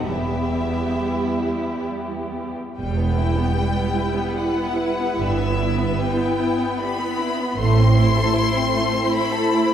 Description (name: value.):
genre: classical, slow romantic movement for string orchestra.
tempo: 64-78 BPM.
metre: 3/4.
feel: rubato.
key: E minor.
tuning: A4 = 445 Hz.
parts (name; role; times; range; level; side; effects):
warm symphonic violin section; melody; 0.0-9.7 s; E5 to C6; -27 LUFS; left 5 dB; none.
rich chamber violin section; second line; 0.0-9.7 s; G3 to C5; -26 LUFS; left 1 dB; none.
warm symphonic viola section; accompaniment; 0.0-9.7 s; G3 to E4; -25 LUFS; right 1 dB; none.
rich chamber double bass section; bass; 0.0-8.2 s; E1 to A1; -23 LUFS; right 2 dB; none.
rich symphonic cello section; bass; 0.0-8.2 s; E2 to A2; -27 LUFS; right 1 dB; none.
room: wet scoring stage reverb, RT60 1.7 s.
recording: heard from further back in the room.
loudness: -19 LUFS.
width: side -9 dB against mid.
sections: 0.0-2.8 A section; 2.8-9.7 B section.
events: none.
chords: 0.1 Em; 5.2 Em/G; 7.6 Am.